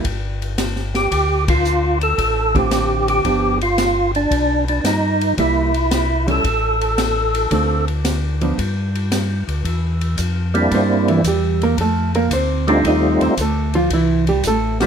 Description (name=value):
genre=soul jazz organ trio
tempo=113 BPM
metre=4/4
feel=swing 69% on 8ths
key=C mixolydian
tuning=A4 = 440 Hz
part: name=hollow-body jazz guitar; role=accompaniment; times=0.0-14.9 s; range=D3 to Eb5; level=-19 LUFS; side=right 3 dB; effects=none
part: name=tonewheel organ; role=bass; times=0.0-14.9 s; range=G1 to G2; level=-21 LUFS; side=left 1 dB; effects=slow rotary speaker
part: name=open jazz drum kit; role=drums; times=0.0-14.9 s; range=hi-hat, kick drum, ride cymbal, snare drum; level=-25 LUFS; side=left 2 dB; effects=none
part: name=percussive tonewheel organ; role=melody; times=1.0-14.9 s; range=G3 to A4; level=-17 LUFS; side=right 1 dB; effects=slow rotary speaker, overdrive, chorus vibrato
room=light reverb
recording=none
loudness=-15 LUFS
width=side -7 dB against mid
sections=0.0-9.6 A section; 9.6-14.9 B section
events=band accent 1.4; hollow-body jazz guitar solo 9.6-14.9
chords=0.0 N.C.; 1.1 Dm7; 3.2 G7; 5.4 C7; 6.4 N.C.; 7.5 Dm7; 8.6 G5; 9.6 C7; 11.8 F7; 13.9 C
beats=0.05 0.58 | 1.12 1.65 2.18 2.71 | 3.25 3.78 4.31 4.84 | 5.38 5.91 6.44 6.97 | 7.51 8.04 8.57 9.11 | 9.64 10.17 10.71 11.24 | 11.77 12.31 12.84 13.38 | 13.91 14.44